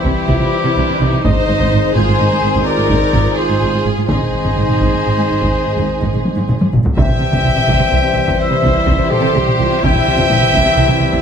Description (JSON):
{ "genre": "cinematic, epic orchestral film score", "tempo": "84 BPM (dotted quarters)", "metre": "12/8", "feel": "straight", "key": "unclear", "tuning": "A4 = 439 Hz", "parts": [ { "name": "rich studio violin section", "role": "melody", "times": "0.0-11.2 s", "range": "E4 to E5", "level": "-24 LUFS", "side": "left 3 dB", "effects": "none" }, { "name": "warm symphonic violin section", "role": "second line", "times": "0.0-11.2 s", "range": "E4 to E5", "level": "-22 LUFS", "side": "left 3 dB", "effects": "none" }, { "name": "rich symphonic viola section", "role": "accompaniment", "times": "0.0-11.2 s", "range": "C4 to A4", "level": "-23 LUFS", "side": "right 3 dB", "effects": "none" }, { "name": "dark trombone section", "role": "sustained chords", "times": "0.0-11.2 s", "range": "Eb3 to Ab3", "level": "-23 LUFS", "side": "right 3 dB", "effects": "none" }, { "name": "dark woodwind section", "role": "sustained chords", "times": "0.0-11.2 s", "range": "C4 to E5", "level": "-26 LUFS", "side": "left 2 dB", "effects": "none" }, { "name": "mellow French horn section", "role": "sustained chords", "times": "0.0-11.2 s", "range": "C4 to C5", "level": "-25 LUFS", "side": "left 8 dB", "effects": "none" }, { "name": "mellow trumpet section", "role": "stabs", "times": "0.0-11.2 s", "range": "G4 to G5", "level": "-19 LUFS", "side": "left 1 dB", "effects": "none" }, { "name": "rich symphonic cello section", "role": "bass", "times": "0.0-11.2 s", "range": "Ab2 to C3", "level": "-20 LUFS", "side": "right 2 dB", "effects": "none" }, { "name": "rich studio double bass section", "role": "bass", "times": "0.1-11.1 s", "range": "Ab1 to C2", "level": "-20 LUFS", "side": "right 2 dB", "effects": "none" }, { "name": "taiko ensemble", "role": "drums", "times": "0.1-11.2 s", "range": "none", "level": "-18 LUFS", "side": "equal", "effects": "none" } ], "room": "light reverb", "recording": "close, detailed microphones", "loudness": "-12 LUFS", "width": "side -7 dB against mid", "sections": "0.0-11.2 A section", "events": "drum fill 6.3-7.0", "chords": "0.0 C; 1.2 Ab; 7.0 C" }